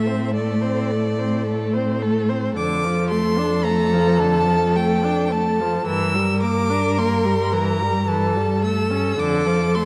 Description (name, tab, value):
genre	classical, slow romantic movement for string quartet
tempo	54 BPM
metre	3/4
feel	rubato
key	D minor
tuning	A4 = 438 Hz
part	rich violin	melody	0.0-9.9 s	D5 to E6	-28 LUFS	equal	none
part	warm violin	second line	0.0-9.9 s	A4 to C5	-26 LUFS	equal	none
part	dark viola	accompaniment	0.0-9.9 s	D3 to D4	-27 LUFS	equal	none
part	dark cello	bass	0.0-9.9 s	F2 to A2	-24 LUFS	equal	none
room	moderate scoring stage reverb, RT60 1.9 s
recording	dark, warm production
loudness	-20 LUFS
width	mono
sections	0.0-9.9 A section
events	none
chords	0.0 Amadd11; 2.6 Dm/F; 5.9 Em7b5/G; 8.1 A7/G; 9.2 Dm/F